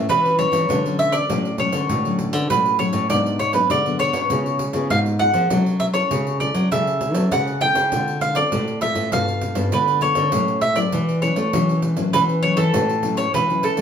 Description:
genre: samba and choro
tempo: 100 BPM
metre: 4/4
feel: straight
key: A major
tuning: A4 = 440 Hz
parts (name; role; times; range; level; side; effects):
- nylon-string guitar; accompaniment; 0.0-13.8 s; G#2 to A4; -27 LUFS; left 4 dB; none
- nylon-string guitar; bass; 0.0-13.8 s; G2 to A3; -23 LUFS; equal; none
- mandolin; melody; 0.1-13.8 s; A4 to G5; -20 LUFS; right 1 dB; none
- pandeiro; percussion; 0.1-13.8 s; none; -27 LUFS; right 1 dB; none
room: wet studio reverb, RT60 0.7 s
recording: band playing live in one room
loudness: -17 LUFS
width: side -8 dB against mid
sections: 0.0-13.8 A section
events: none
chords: 0.0 A7 (rootless); 0.7 Dmaj7; 3.1 G#m7b5; 4.3 C#7; 5.5 F#m7; 7.9 Dm7; 9.1 G9; 10.3 A6

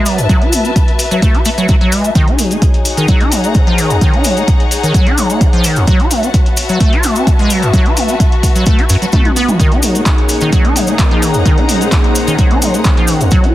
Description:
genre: acid house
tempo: 129 BPM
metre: 4/4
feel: straight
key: unclear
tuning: A4 = 440 Hz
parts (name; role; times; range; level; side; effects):
- acid bass, square; riff; 0.0-13.5 s; Eb2 to Gb4; -15 LUFS; equal; ensemble chorus, sidechain pumping, tape echo
- dark studio string section; texture; 0.0-13.5 s; Db4 to Bb5; -19 LUFS; left 2 dB; sidechain pumping
- electro analog drum machine; drums; 0.1-13.5 s; handclaps, hi-hat, toms; -21 LUFS; left 1 dB; none
- cabasa; percussion; 0.1-13.4 s; none; -22 LUFS; left 2 dB; none
- electronic kick drum; drums; 0.3-13.4 s; none; -12 LUFS; equal; none
- string machine, full ensemble; sustained chords; 9.6-13.5 s; A3 to Gb5; -19 LUFS; left 1 dB; ensemble chorus, sidechain pumping
room: light reverb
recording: dense, heavily limited modern master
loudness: -9 LUFS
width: side -14 dB against mid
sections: 0.0-13.5 A section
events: drum fill 9.1-9.6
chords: 0.0 Gbm7; 2.2 Ebm7; 5.9 Gbm7; 9.6 Ebm7

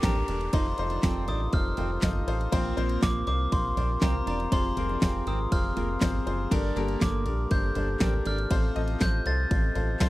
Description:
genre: piano-driven pop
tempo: 120 BPM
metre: 4/4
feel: straight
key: unclear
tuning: A4 = 440 Hz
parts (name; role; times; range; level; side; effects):
- glockenspiel with hard plastic mallets; melody; 0.0-10.1 s; Bb5 to A6; -33 LUFS; equal; none
- clear concert grand piano; accompaniment; 0.0-10.1 s; G2 to Eb5; -33 LUFS; left 5 dB; none
- mellow French horn section; sustained chords; 0.0-10.1 s; C3 to A4; -38 LUFS; right 2 dB; none
- fingerpicked steel-string acoustic guitar; riff; 0.0-8.4 s; Bb3 to F4; -36 LUFS; right 7 dB; none
- round analog bass; bass; 0.0-10.1 s; E1 to C2; -30 LUFS; equal; none
- pop drum kit; drums; 0.0-10.1 s; handclaps, kick drum, ride cymbal, snare drum, toms; -28 LUFS; equal; none
- downlifter; sound effects; 0.0-2.5 s; none; -47 LUFS; left 2 dB; none
room: little or no reverb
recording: dry, close 1970s-style studio recording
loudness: -24 LUFS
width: side -17 dB against mid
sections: 0.0-10.1 A section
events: none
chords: 0.0 Gmadd9; 0.5 F7; 2.5 Bbsus2; 4.5 Fm; 6.5 Gmadd9; 8.5 F/A

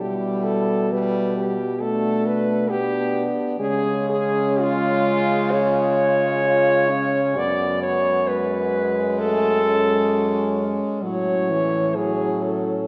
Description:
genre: classical, lyrical piece for horn quartet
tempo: 65 BPM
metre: 4/4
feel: rubato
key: F# minor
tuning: A4 = 439 Hz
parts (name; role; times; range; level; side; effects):
- warm French horn; melody; 0.0-12.9 s; E#4 to D5; -24 LUFS; equal; none
- warm French horn; second line; 0.0-12.9 s; A3 to E#4; -31 LUFS; equal; none
- mellow French horn; accompaniment; 0.0-12.9 s; E3 to B3; -28 LUFS; equal; none
- mellow French horn; bass; 0.0-12.9 s; F#2 to C#3; -28 LUFS; equal; none
room: wet concert hall reverb, RT60 2.5 s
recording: heard from further back in the room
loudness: -21 LUFS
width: mono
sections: 0.0-12.9 A section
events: none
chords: 0.0 G/B; 3.6 C#; 7.4 F#m; 11.0 F#m/A

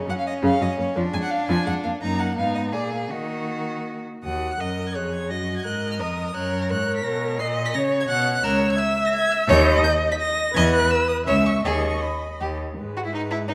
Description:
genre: quick classical-period movement for string quartet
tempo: 169 BPM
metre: 3/4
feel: rubato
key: Eb minor, G# minor from 8.4 s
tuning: A4 = 440 Hz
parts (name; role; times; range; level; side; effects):
- clear violin; second line; 0.0-13.5 s; Db4 to Gb5; -30 LUFS; equal; none
- warm viola; accompaniment; 0.0-13.5 s; Db3 to E5; -28 LUFS; equal; none
- warm violin; melody; 0.1-13.5 s; B4 to C7; -30 LUFS; equal; none
- rich cello; bass; 0.1-13.5 s; C#2 to Eb3; -28 LUFS; equal; none
room: moderate scoring stage reverb, RT60 1.7 s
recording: none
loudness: -23 LUFS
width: mono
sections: 0.0-4.2 A section; 4.2-12.8 B section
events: none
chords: 0.0 Gb5; 1.0 Bb7/F (rootless); 2.0 Ebm/Gb; 2.4 Fm7b5/Ab; 2.7 Bb7; 3.1 Ebm; 5.3 Ebm/Gb; 6.3 Gb; 7.4 Gb/Bb; 8.4 A#dim/C# (rootless); 9.5 D#5; 10.5 E5; 11.3 C#m; 11.7 G#m/D#; 12.8 G#m

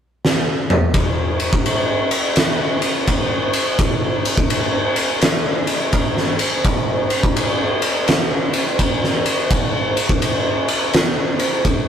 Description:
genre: metal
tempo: 84 BPM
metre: 4/4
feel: swing 64% on 8ths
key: none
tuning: none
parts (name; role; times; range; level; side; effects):
- oversized low-tuned drum kit; drums; 0.2-11.9 s; kick drum, ride cymbal, snare drum, toms; -16 LUFS; equal; none
room: light reverb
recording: rough rehearsal-room recording, warm saturation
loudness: -16 LUFS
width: side -8 dB against mid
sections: 0.9-11.9 A section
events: drum fill 0.2-0.9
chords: none

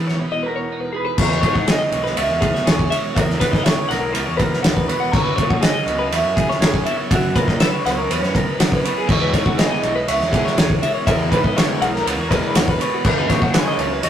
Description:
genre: math rock and midwest emo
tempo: 121 BPM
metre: 4/4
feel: straight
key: E lydian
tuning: A4 = 440 Hz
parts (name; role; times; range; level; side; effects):
- twelve-string electric guitar; accompaniment; 0.0-14.1 s; E2 to G#4; -28 LUFS; right 4 dB; harmonic tremolo
- twelve-string electric guitar; arpeggios; 0.0-14.1 s; F#4 to F#5; -24 LUFS; left 3 dB; tremolo
- fuzz picked electric bass; bass; 0.0-14.1 s; B1 to E3; -27 LUFS; equal; overdrive
- loose indie drum kit; drums; 0.1-14.1 s; crash cymbal, kick drum, ride cymbal, snare drum; -18 LUFS; equal; none
- electric guitar through a small old amp; melody; 0.5-14.1 s; F#4 to E5; -24 LUFS; right 2 dB; spring reverb
- overdriven electric guitar; riff; 9.1-13.9 s; C#3 to E4; -25 LUFS; left 1 dB; none
room: moderate studio reverb, RT60 0.6 s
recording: rough rehearsal-room recording, tube saturation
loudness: -16 LUFS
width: side -10 dB against mid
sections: 0.0-1.2 A section; 1.2-14.1 B section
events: break 0.2-1.2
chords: 0.0 Emaj9; 1.2 E69; 5.1 F#9sus4; 9.1 E69; 13.0 F#7sus4

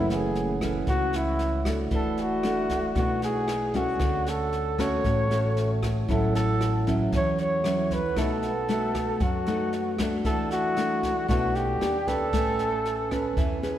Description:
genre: bossa nova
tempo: 115 BPM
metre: 4/4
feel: straight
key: A major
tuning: A4 = 440 Hz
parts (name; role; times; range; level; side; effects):
- breathy flugelhorn; melody; 0.0-13.8 s; E4 to C#5; -28 LUFS; left 1 dB; none
- nylon-string guitar; accompaniment; 0.0-13.8 s; F#2 to B4; -29 LUFS; equal; none
- vibraphone with medium mallets; accompaniment; 0.0-13.8 s; A3 to G#5; -33 LUFS; right 3 dB; none
- upright bass; bass; 0.0-13.8 s; E1 to F#2; -31 LUFS; equal; none
- jazz brush drum kit; drums; 0.1-13.7 s; kick drum, rim click, snare drum; -32 LUFS; equal; none
room: wet echo chamber reverb, RT60 2.2 s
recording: heard from further back in the room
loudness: -23 LUFS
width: side -11 dB against mid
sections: 0.0-13.8 A section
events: none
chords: 0.0 F#m7; 1.9 E9sus4; 4.0 Dmaj7; 6.1 A6; 8.2 B7; 10.2 E9sus4; 11.8 D#maj7; 12.3 Amaj9

